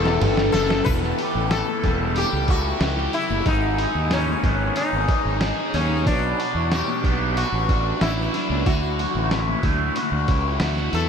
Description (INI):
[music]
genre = psychedelic rock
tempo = 92 BPM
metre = 4/4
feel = straight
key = E dorian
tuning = A4 = 440 Hz
[part]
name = sitar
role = melody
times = 0.0-11.1 s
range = C#4 to B4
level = -25 LUFS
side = left 2 dB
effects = diffuse ambient delay
[part]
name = mellow tonewheel organ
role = sustained chords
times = 0.0-0.8 s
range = E3 to B4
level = -38 LUFS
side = right 3 dB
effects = none
[part]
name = cranked stack guitar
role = riff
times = 0.0-11.1 s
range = E2 to G#4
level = -25 LUFS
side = left 1 dB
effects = overdrive, phaser
[part]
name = fuzz fingered electric bass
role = bass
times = 0.0-11.1 s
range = E1 to E2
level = -24 LUFS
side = right 1 dB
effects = overdrive
[part]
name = lo-fi sampler-style drum kit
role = drums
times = 0.1-11.1 s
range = hi-hat, kick drum, ride cymbal, snare drum, toms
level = -26 LUFS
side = right 1 dB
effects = none
[part]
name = congas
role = percussion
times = 0.5-11.1 s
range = none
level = -36 LUFS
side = left 13 dB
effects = none
[sound]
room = moderate huge ambient reverb, RT60 7.9 s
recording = dreamy mix soaked in reverb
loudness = -19 LUFS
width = side -7 dB against mid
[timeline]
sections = 0.9-11.1 A section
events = drum fill 0.0-0.9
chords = 0.0 Em; 3.5 G#m; 6.1 Bm; 8.7 Dadd9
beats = 0.22 | 0.87 1.52 2.17 2.82 | 3.46 4.11 4.76 5.41 | 6.06 6.71 7.36 8.01 | 8.66 9.31 9.96 10.61